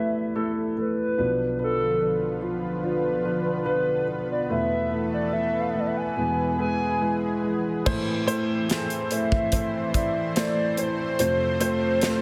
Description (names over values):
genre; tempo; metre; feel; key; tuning
pop ballad; 72 BPM; 4/4; straight; A minor from 7.9 s; A4 = 444 Hz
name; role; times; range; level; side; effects
hollow clarinet-like synth lead; melody; 0.0-12.2 s; A4 to G#5; -29 LUFS; equal; chorus
dark grand piano; accompaniment; 0.0-12.2 s; B1 to D5; -29 LUFS; equal; none
lush unison pad; sustained chords; 1.2-12.2 s; D3 to C5; -33 LUFS; equal; chorus
modern studio drum kit; drums; 7.9-12.2 s; crash cymbal, hi-hat, kick drum, snare drum; -30 LUFS; equal; none
room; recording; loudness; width
light reverb, studio reverb; none; -25 LUFS; mono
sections
0.0-7.9 A section; 7.9-12.2 B section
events
none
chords
0.0 Esus4; 1.2 Bdim; 4.5 Esus4; 6.2 E; 7.9 Am; 11.2 F